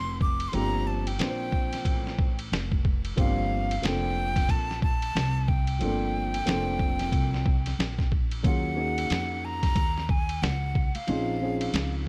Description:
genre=hip hop, jazz-hop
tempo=91 BPM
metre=4/4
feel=swing 60% on 16ths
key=G minor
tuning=A4 = 440 Hz
part: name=breathy bright jazz flute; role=melody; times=0.0-11.9 s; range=F5 to D6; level=-35 LUFS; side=equal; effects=none
part: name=upright bass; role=bass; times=0.0-12.1 s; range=F1 to F2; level=-33 LUFS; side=equal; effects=none
part: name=lo-fi sampler-style drum kit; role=drums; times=0.2-11.9 s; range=hi-hat, kick drum, ride cymbal, snare drum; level=-30 LUFS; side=equal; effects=none
part: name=dark grand piano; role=accompaniment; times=0.5-12.1 s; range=F3 to C5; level=-34 LUFS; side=equal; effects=none
room=small room ambience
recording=none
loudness=-27 LUFS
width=mono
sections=0.0-8.4 A section; 8.4-12.1 B section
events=none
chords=0.0 Gm11; 8.4 Ebm11; 11.1 Bbm11

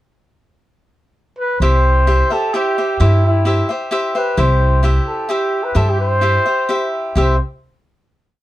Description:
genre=mexican folk, mariachi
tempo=130 BPM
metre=3/4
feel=straight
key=C major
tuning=A4 = 439 Hz
part: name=mellow trumpet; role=melody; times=1.4-7.4 s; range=E4 to C5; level=-18 LUFS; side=equal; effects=none
part: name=cavaquinho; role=accompaniment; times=1.6-7.4 s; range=E4 to E5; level=-20 LUFS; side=left 1 dB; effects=none
part: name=upright bass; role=bass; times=1.6-7.4 s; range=C2 to G2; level=-14 LUFS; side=equal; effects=none
room=light reverb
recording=dark, warm production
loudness=-14 LUFS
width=side -15 dB against mid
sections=0.2-1.6 pickup bar; 1.6-7.2 A section; 7.2-8.4 final chord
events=none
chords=0.2 N.C.; 1.6 C

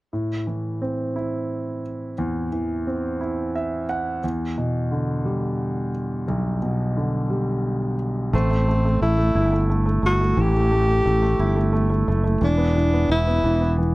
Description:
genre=six-eight pop ballad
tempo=59 BPM (dotted quarters)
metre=6/8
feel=straight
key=unclear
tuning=A4 = 439 Hz
part: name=clear concert grand piano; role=accompaniment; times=0.1-13.9 s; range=B1 to F#5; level=-24 LUFS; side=right 1 dB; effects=none
part: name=warm tenor saxophone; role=melody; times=8.3-13.7 s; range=C4 to G4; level=-22 LUFS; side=equal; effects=none
part: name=sustaining fretless electric bass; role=bass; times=8.3-13.9 s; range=E1 to A1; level=-20 LUFS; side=equal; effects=none
room=little or no reverb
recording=dry, close 1970s-style studio recording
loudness=-20 LUFS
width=side -20 dB against mid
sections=0.1-8.3 A section; 8.3-13.9 B section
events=grand piano fill 3.2-4.2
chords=0.1 Am; 4.2 Em7; 8.3 A7(no3); 12.4 E7(no3)

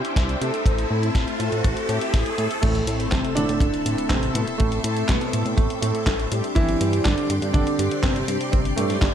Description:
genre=italo disco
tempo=122 BPM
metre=4/4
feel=straight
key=A minor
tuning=A4 = 440 Hz
part: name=string machine, full ensemble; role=sustained chords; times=0.0-9.1 s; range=G4 to E6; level=-30 LUFS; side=equal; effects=ensemble chorus
part: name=mellow synth brass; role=stabs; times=0.0-9.1 s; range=G3 to C5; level=-28 LUFS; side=left 2 dB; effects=chorus, phaser
part: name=chorused synth bass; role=bass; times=0.0-9.1 s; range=G1 to C3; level=-26 LUFS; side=equal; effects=none
part: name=clean 12-bit digital drum machine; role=drums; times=0.0-9.1 s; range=crash cymbal, handclaps, hi-hat, snare drum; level=-30 LUFS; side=left 1 dB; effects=high-pass filter on hats, high-pass filter on snare, high-pass filter on cymbals, gated reverb
part: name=riser, swell and sub drop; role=sound effects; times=0.0-4.6 s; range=none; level=-30 LUFS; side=right 1 dB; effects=none
part: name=kick drum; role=drums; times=0.2-9.1 s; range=none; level=-22 LUFS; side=equal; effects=none
part: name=warm concert grand piano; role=melody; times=2.6-9.1 s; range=G2 to E4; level=-25 LUFS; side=right 3 dB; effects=ping-pong delay
room=light reverb, small room ambience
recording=none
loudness=-20 LUFS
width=side -9 dB against mid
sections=0.0-2.6 A section; 2.6-9.1 B section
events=riser 0.0-2.6; swell 1.6-2.6; impact 2.6-4.6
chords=0.0 Cadd9; 0.7 Am; 6.6 Gsus4

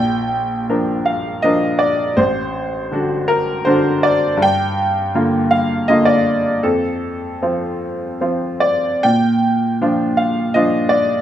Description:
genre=classical, romantic character piece for solo piano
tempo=69-85 BPM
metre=3/4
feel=rubato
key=Bb major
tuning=A4 = 438 Hz
part: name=bright upright piano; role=solo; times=0.0-11.2 s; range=A1 to G5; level=-15 LUFS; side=equal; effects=none
room=moderate recital hall reverb, RT60 1.3 s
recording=close, detailed microphones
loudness=-15 LUFS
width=side -10 dB against mid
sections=0.0-11.2 A section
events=none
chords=0.0 Bb; 2.2 D7/A; 4.4 Gm7; 6.6 F; 9.0 Bb

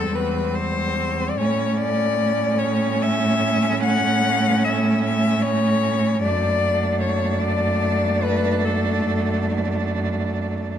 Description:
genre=classical, lyrical piece for cello ensemble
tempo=50 BPM (dotted quarters)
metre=12/8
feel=rubato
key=A major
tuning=A4 = 440 Hz
part: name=rich cello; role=melody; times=0.0-9.5 s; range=A4 to F#5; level=-23 LUFS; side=left 6 dB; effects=none
part: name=clear cello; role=second line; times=0.0-10.8 s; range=C4 to D4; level=-27 LUFS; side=right 8 dB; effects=none
part: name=rich cello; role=accompaniment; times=0.0-10.8 s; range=G3 to A3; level=-26 LUFS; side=left 2 dB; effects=none
part: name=rich cello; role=bass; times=0.0-10.8 s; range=E2 to A2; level=-23 LUFS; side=right 2 dB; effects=none
room=moderate recital hall reverb, RT60 1.7 s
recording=close, detailed microphones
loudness=-18 LUFS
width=side -9 dB against mid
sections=0.0-10.8 A section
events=none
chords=0.0 C/E; 1.4 A; 6.2 D/F#

